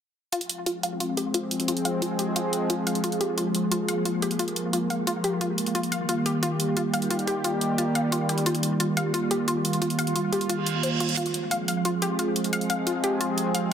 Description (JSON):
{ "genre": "dark technical drum and bass", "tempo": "177 BPM", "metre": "4/4", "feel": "straight", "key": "F minor", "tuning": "A4 = 444 Hz", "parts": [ { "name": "sweeping resonant pad", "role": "sustained chords", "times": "0.3-13.7 s", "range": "Eb3 to Ab4", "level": "-26 LUFS", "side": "right 1 dB", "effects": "chorus" }, { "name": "analog pluck", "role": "arpeggios", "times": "0.3-13.7 s", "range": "F4 to F5", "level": "-29 LUFS", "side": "left 2 dB", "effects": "chorus, dub echo" }, { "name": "electronic hi-hat", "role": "drums", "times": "0.3-13.6 s", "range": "none", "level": "-30 LUFS", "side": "right 1 dB", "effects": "overdrive" }, { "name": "reverse cymbal", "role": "sound effects", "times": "10.6-11.2 s", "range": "none", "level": "-31 LUFS", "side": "right 7 dB", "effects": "none" } ], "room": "moderate lush hall reverb, RT60 2.3 s", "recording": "dense, heavily limited modern master", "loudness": "-23 LUFS", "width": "side -8 dB against mid", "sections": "0.3-13.7 A section", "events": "filter sweep on synth arpeggio sound 0.3-13.7; reverse cymbal 10.6-11.2", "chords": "0.3 Fm; 5.7 Eb; 11.2 Fm" }